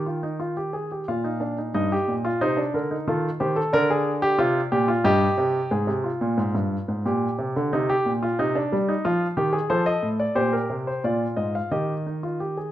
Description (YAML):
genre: classical, baroque-style 3-part fugue for grand piano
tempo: 90 BPM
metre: 3/4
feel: straight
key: Eb major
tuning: A4 = 440 Hz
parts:
  - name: warm grand piano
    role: solo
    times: 0.0-12.7 s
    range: G2 to G5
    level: -22 LUFS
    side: equal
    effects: none
room: moderate large studio reverb, RT60 1.2 s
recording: dark, warm production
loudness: -21 LUFS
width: side -13 dB against mid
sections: 0.0-1.7 A section; 1.7-5.7 B section; 5.7-12.7 A section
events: none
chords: 0.0 Ebadd9; 1.1 Bb; 1.7 Eb/G; 3.1 F7/Eb; 3.7 Bb7/D; 5.1 Eb/G; 5.7 Abmaj13; 7.1 Gm/Bb; 7.7 Cm; 9.1 Fm7; 9.7 F7; 10.4 Gmadd11/Bb; 11.0 Bb; 11.7 Eb